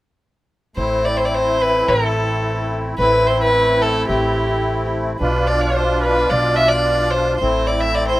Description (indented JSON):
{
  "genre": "klezmer",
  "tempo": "108 BPM",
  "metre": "2/4",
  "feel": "straight",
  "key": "A minor",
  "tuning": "A4 = 439 Hz",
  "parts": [
    { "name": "rich violin", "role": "melody", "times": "0.8-8.2 s", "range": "G4 to E5", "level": "-17 LUFS", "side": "equal", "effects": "none" },
    { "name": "musette accordion", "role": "accompaniment", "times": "0.8-8.2 s", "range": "B2 to F4", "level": "-21 LUFS", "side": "equal", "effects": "none" },
    { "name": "upright bass", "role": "bass", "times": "0.8-8.2 s", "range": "A1 to B1", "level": "-23 LUFS", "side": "equal", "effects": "none" }
  ],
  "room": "small room ambience",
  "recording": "rough home demo mix",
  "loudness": "-15 LUFS",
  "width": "side -17 dB against mid",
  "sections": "0.8-8.2 A section",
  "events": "none",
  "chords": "0.8 Am; 5.2 Bdim; 7.4 Am"
}